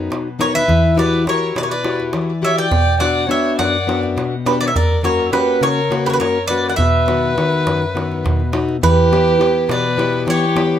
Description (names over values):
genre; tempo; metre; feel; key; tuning
greek folk, Greek bouzouki band; 207 BPM (eighths); 7/8; straight; E dorian sharp4; A4 = 440 Hz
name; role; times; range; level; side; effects
fingerpicked plugged-in steel-string acoustic guitar; accompaniment; 0.0-10.8 s; F#2 to G4; -19 LUFS; left 4 dB; none
darbuka; percussion; 0.1-10.7 s; none; -20 LUFS; right 2 dB; none
Greek bouzouki; melody; 0.4-10.8 s; B4 to G5; -19 LUFS; right 3 dB; tape echo
dark violin; second line; 0.4-10.8 s; G4 to D5; -22 LUFS; left 3 dB; none
room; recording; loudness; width
light reverb; close, detailed microphones; -14 LUFS; side -10 dB against mid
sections
0.0-8.8 A section; 8.8-10.8 B section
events
none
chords
0.0 B; 0.7 Emadd9; 2.7 Bm; 4.8 F#; 6.8 B; 8.8 Em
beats
0.11 0.40 | 0.69 0.98 1.27 1.56 1.85 2.14 2.43 | 2.72 3.01 3.30 3.59 3.88 4.17 4.46 | 4.75 5.04 5.33 5.62 5.91 6.20 6.49 | 6.78 7.07 7.36 7.65 7.94 8.23 8.53 | 8.82 9.11 9.40 9.69 9.98 10.27 10.56